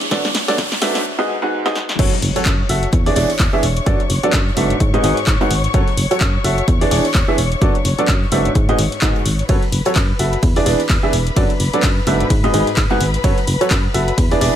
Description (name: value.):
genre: piano house.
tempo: 128 BPM.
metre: 4/4.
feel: swing 58% on 16ths.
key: F# minor.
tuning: A4 = 440 Hz.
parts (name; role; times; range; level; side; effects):
muted studio string section; sustained chords; 0.0-14.6 s; B4 to C#6; -26 LUFS; left 4 dB; vintage 12-bit sampler grit, sidechain pumping.
punchy analog drum machine; drums; 0.0-14.5 s; crash cymbal, handclaps, hi-hat, ride cymbal, snare drum; -23 LUFS; left 1 dB; none.
riser and impact; sound effects; 0.0-3.9 s; none; -26 LUFS; right 1 dB; none.
clear upright piano; riff; 0.1-14.5 s; G#2 to F#5; -18 LUFS; right 1 dB; sidechain pumping, ping-pong delay.
electronic kick drum; drums; 0.1-14.3 s; none; -17 LUFS; equal; none.
solid FM bass; bass; 2.0-14.5 s; E1 to G#2; -20 LUFS; equal; sidechain pumping.
oversized low-tuned drum kit; drums; 2.0-14.5 s; hi-hat, shaker, snare drum; -36 LUFS; right 3 dB; none.
room: small room ambience.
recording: high-pass filter.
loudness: -14 LUFS.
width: side -10 dB against mid.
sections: 0.0-2.0 A section; 2.0-14.6 B section.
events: build-up 0.0-2.0; drum fill 0.0-1.1, 1.6-2.0; riser 0.0-1.1; filter sweep on upright piano 0.0-2.0; break 1.1-2.0; drop 2.0-14.6; impact 2.0-3.9.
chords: 0.1 Bm7/F#; 1.1 G#m7; 2.0 F#m; 2.9 E7; 3.9 Bm7/F#; 4.8 G#m7; 5.7 F#m; 6.7 E7; 7.6 Bm7/F#; 8.6 G#m7; 9.5 F#m; 10.4 E7; 11.4 Bm7/F#; 12.3 G#m7; 13.2 F#m.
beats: | 0.12 0.58 1.05 1.52 | 1.99 2.46 2.93 3.40 | 3.87 4.33 4.80 5.27 | 5.74 6.21 6.68 7.15 | 7.62 8.08 8.55 9.02 | 9.49 9.96 10.43 10.90 | 11.37 11.83 12.30 12.77 | 13.24 13.71 14.18.